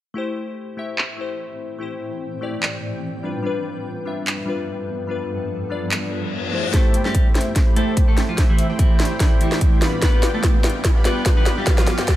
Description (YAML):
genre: future bass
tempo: 146 BPM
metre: 4/4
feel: swing 54% on 16ths, half-time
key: A minor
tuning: A4 = 439 Hz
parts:
  - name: glassy digital keys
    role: accompaniment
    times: 0.1-12.2 s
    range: G3 to E5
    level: -28 LUFS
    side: left 4 dB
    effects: chorus, sidechain pumping, dub echo
  - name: shimmering ambient pad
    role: sustained chords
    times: 1.6-12.2 s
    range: G2 to B5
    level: -32 LUFS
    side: right 1 dB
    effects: chorus, built-in reverb, sidechain pumping
  - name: trap drum kit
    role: drums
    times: 1.0-12.2 s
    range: handclaps, hi-hat, snare drum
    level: -24 LUFS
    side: equal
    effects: low-pass filter on snare, studio reverb, low-pass filter on hats
  - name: reverse cymbal and riser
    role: sound effects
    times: 6.1-12.2 s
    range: none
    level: -32 LUFS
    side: left 3 dB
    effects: none
  - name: clean electric guitar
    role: melody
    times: 6.7-12.2 s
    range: E3 to B4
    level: -26 LUFS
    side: right 1 dB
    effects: sidechain pumping
  - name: big bright polysynth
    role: riff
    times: 6.7-12.2 s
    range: A3 to B5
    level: -27 LUFS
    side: right 1 dB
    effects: chorus, sidechain pumping
  - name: electronic kick drum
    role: drums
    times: 6.7-12.2 s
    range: none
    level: -17 LUFS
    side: equal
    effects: studio reverb
room: little or no reverb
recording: none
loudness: -18 LUFS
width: side -14 dB against mid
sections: 0.2-6.7 A section; 6.7-12.2 B section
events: filter sweep on ambient pad 0.2-6.7; reverse cymbal 6.1-6.7; build-up 6.7-12.2; drum fill 6.7-12.2; filter sweep on analog polysynth 6.7-12.2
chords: 0.2 Am7; 3.2 G7; 6.5 Am7; 9.8 G7